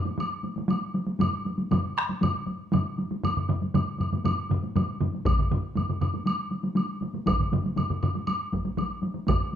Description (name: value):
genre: japanese traditional, taiko drum ensemble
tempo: 119 BPM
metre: 4/4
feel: straight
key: none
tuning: none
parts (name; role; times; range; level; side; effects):
- taiko ensemble; percussion; 0.1-9.6 s; none; -29 LUFS; equal; none
- woodblock; percussion; 0.2-9.4 s; none; -33 LUFS; left 1 dB; none
- solo taiko drums; percussion; 1.2-9.4 s; none; -30 LUFS; left 3 dB; none
- solo taiko drums; percussion; 1.2-9.4 s; none; -30 LUFS; right 6 dB; none
- taiko ensemble; percussion; 5.3-9.4 s; none; -28 LUFS; equal; none
room: moderate large studio reverb, RT60 0.9 s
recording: band playing live in one room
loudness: -25 LUFS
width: side -9 dB against mid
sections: 0.0-9.6 A section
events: none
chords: none